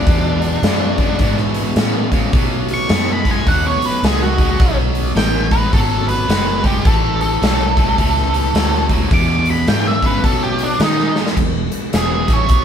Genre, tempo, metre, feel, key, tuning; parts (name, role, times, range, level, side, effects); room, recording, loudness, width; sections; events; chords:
blues rock power trio and southern rock; 106 BPM; 4/4; swing 62% on 8ths; A4 = 441 Hz
octave-fuzz lead guitar; melody; 0.0-12.6 s; D4 to D6; -20 LUFS; equal; distortion
overdriven tonewheel organ; sustained chords; 0.0-12.6 s; F#3 to A4; -30 LUFS; right 2 dB
distorted electric guitar; riff; 0.0-12.6 s; E2 to B3; -21 LUFS; equal; overdrive
vintage muted fingered electric bass; bass; 0.0-12.6 s; E1 to D#3; -20 LUFS; equal
huge arena drum kit; drums; 0.1-12.6 s; crash cymbal, hi-hat, kick drum, snare drum; -17 LUFS; equal
moderate stone room reverb, RT60 1.1 s; band playing live in one room; -13 LUFS; side -8 dB against mid
0.0-11.4 A section; 11.4-12.6 B section
lead electric guitar solo 0.0-11.4; drum fill 11.1
0.0 E7; 2.3 B7; 6.9 A7; 9.1 E7; 10.2 B7; 11.4 E7